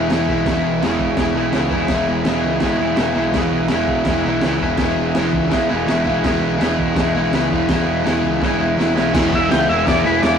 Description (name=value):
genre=garage rock duo or trio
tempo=166 BPM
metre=4/4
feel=straight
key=E major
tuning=A4 = 440 Hz
part: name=combo organ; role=sustained chords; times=0.0-10.4 s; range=G#4 to B5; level=-34 LUFS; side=equal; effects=none
part: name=overdriven semi-hollow guitar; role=riff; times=0.0-10.4 s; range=E3 to E4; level=-17 LUFS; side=equal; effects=none
part: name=growling picked electric bass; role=bass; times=0.0-10.4 s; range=E1 to E2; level=-26 LUFS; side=equal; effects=overdrive
part: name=crunchy breakbeat drum kit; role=drums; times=0.1-10.3 s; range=crash cymbal, kick drum, snare drum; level=-22 LUFS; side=equal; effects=none
part: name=combo organ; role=melody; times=9.4-10.4 s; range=B4 to G5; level=-19 LUFS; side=right 1 dB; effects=none
room=moderate stone room reverb, RT60 1.0 s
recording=rough rehearsal-room recording, warm saturation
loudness=-15 LUFS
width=side -7 dB against mid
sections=0.0-9.1 A section; 9.1-10.4 B section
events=transistor combo organ fill 2.6-3.3, 5.5-6.2; drum fill 8.4-9.1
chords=0.0 E